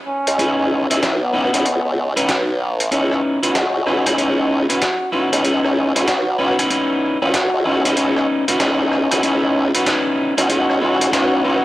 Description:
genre	glitch hop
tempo	95 BPM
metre	4/4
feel	swing 63% on 16ths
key	C# minor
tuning	A4 = 440 Hz
part	breathy trumpet	melody	0.1-11.6 s	B3 to F#4	-23 LUFS	equal	cassette tape, tape echo
part	formant-sweep wobble bass	bass	0.3-11.6 s	B1 to C#2	-20 LUFS	equal	chorus, overdrive, high-pass filter
part	boom bap sampler-style drum kit	drums	0.3-11.3 s	hi-hat, rim click, snare drum	-22 LUFS	equal	high-pass filter on snare, small room ambience, cassette tape, high-pass filter on hats
part	electric guitar at the edge of break-up	stabs	0.4-11.6 s	C#4 to B4	-19 LUFS	equal	cassette tape
room	light reverb, digital ambience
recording	home recording on cassette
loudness	-15 LUFS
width	side -16 dB against mid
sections	0.0-11.6 A section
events	build-up 0.0-11.6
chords	0.0 C#m9

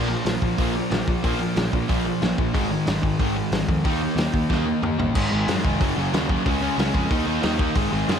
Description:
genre	punk rock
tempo	184 BPM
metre	4/4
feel	straight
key	Bb minor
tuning	A4 = 440 Hz
part	crunchy overdriven guitar	riff	0.0-8.2 s	Gb2 to Eb4	-26 LUFS	right 10 dB	none
part	high-gain distorted guitar	riff	0.0-8.2 s	Gb2 to Eb4	-30 LUFS	equal	distortion
part	overdriven electric guitar	riff	0.0-8.2 s	Gb2 to Eb4	-27 LUFS	left 14 dB	none
part	fuzz picked electric bass	bass	0.0-8.2 s	F1 to Gb2	-28 LUFS	equal	overdrive
part	loose indie drum kit	drums	0.3-8.2 s	crash cymbal, hi-hat, kick drum, snare drum, toms	-25 LUFS	equal	none
room	light reverb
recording	none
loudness	-20 LUFS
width	side -8 dB against mid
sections	0.0-5.2 A section; 5.2-8.2 B section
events	drum fill 4.5-5.2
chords	0.0 Bb5; 2.5 Ab5; 3.9 Eb5; 5.2 Ab5; 5.8 Gb5; 6.5 Db; 7.1 Eb5

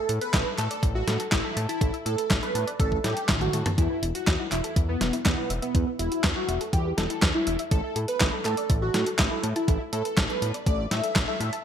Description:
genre	italo disco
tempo	122 BPM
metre	4/4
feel	straight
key	unclear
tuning	A4 = 440 Hz
part	wide unison lead	melody	0.0-11.5 s	B3 to E5	-29 LUFS	right 1 dB	wide subtle chorus, cassette tape, digital delay
part	soft round pluck	arpeggios	0.0-11.6 s	E4 to A5	-35 LUFS	left 4 dB	chorus, cassette tape, digital delay
part	fat analog bass	bass	0.1-11.5 s	E1 to A2	-30 LUFS	equal	none
part	clean 12-bit digital drum machine	drums	0.1-11.6 s	handclaps, hi-hat, snare drum, toms	-27 LUFS	equal	gated reverb
part	electronic kick drum	drums	0.3-11.3 s	none	-25 LUFS	equal	none
room	light reverb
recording	bright 1980s-style digital production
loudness	-23 LUFS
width	side -8 dB against mid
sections	0.0-11.6 A section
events	drum fill 3.3-3.8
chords	0.0 Asus2; 3.8 E5; 7.7 Asus2

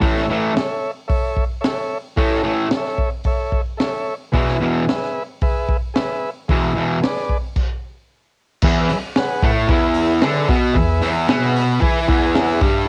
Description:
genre	garage rock duo or trio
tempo	112 BPM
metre	4/4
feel	straight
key	E mixolydian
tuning	A4 = 440 Hz
part	combo organ	sustained chords	0.0-12.9 s	E4 to B5	-27 LUFS	equal	cassette tape
part	fuzz guitar	riff	0.0-12.9 s	E2 to E4	-20 LUFS	equal	distortion, cassette tape
part	crunchy breakbeat drum kit	drums	0.0-12.7 s	crash cymbal, hi-hat, kick drum, snare drum	-22 LUFS	equal	cassette tape
room	light reverb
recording	home recording on cassette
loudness	-19 LUFS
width	mono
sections	0.0-8.6 A section; 8.6-12.9 B section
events	stop 7.6-8.6; transistor combo organ fill 11.3-12.9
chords	0.0 A; 4.3 E

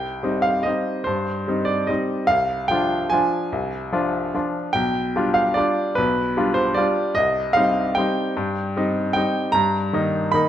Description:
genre	classical, piano waltz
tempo	149 BPM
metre	3/4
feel	uneven beats, rubato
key	C minor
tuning	A4 = 439 Hz
part	bright grand piano	solo	0.0-10.5 s	B1 to B5	-19 LUFS	equal	none
room	moderate recital hall reverb, RT60 1.5 s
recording	none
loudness	-19 LUFS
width	side -10 dB against mid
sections	0.0-10.5 A section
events	none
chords	0.0 Cm; 2.3 Dm7b5/C; 4.7 G7/B; 7.2 Cm; 9.6 D#/G

